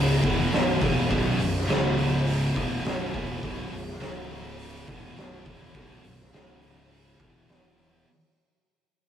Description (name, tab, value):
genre	stoner and doom metal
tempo	103 BPM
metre	4/4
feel	straight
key	unclear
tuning	A4 = 442 Hz
part	heavy high-gain guitar	riff	0.0-8.1 s	B1 to E3	-32 LUFS	equal	distortion
part	thick fuzz guitar	riff	0.0-8.1 s	B1 to E3	-31 LUFS	left 3 dB	distortion
part	thick fuzz guitar	riff	0.0-8.1 s	B1 to E3	-30 LUFS	right 4 dB	distortion
part	fuzz fingered electric bass	bass	0.0-8.0 s	B0 to E1	-35 LUFS	equal	overdrive
part	oversized low-tuned drum kit	drums	0.2-7.9 s	hi-hat, kick drum, snare drum	-29 LUFS	equal	none
room	moderate stone room reverb, RT60 1.0 s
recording	rough rehearsal-room recording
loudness	-23 LUFS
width	side -9 dB against mid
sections	0.0-8.1 A section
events	fade-out 0.0-8.1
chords	0.2 B5; 1.7 C#5; 2.6 B5; 4.0 C#5; 4.9 B5; 6.3 C#5; 7.2 E5